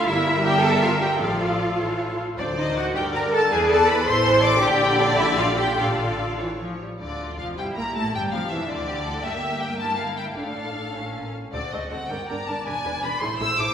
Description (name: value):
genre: quick classical-period movement for string orchestra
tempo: 97-111 BPM (dotted quarters)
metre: 6/8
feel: rubato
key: D minor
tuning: A4 = 440 Hz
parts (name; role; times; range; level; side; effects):
- warm symphonic violin section; melody; 0.0-13.7 s; C5 to E6; -28 LUFS; left 2 dB; none
- rich symphonic violin section; second line; 0.0-13.7 s; D4 to D6; -27 LUFS; left 1 dB; none
- warm studio viola section; accompaniment; 0.0-13.7 s; D3 to C5; -27 LUFS; equal; none
- dark symphonic cello section; bass; 0.0-13.7 s; D2 to D5; -25 LUFS; right 1 dB; none
- warm symphonic double bass section; bass; 0.0-13.7 s; E1 to G2; -30 LUFS; right 1 dB; none
room: wet recital hall reverb, RT60 1.5 s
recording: recorded in a church or concert hall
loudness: -20 LUFS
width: side -8 dB against mid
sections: 0.0-7.0 A section; 7.0-13.7 A section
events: none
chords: 0.1 Edim/G; 1.2 Dm/A; 1.8 A; 2.4 D7; 3.0 Gm; 3.5 E7; 4.1 Am; 4.6 Gm/Bb; 5.8 Dm/A; 6.4 A; 7.0 Dm; 7.6 A5/G; 8.1 Dm; 9.2 Edim/G; 10.4 Dm/A; 10.9 A; 11.5 D7; 12.1 Gm; 12.7 E7; 13.2 Am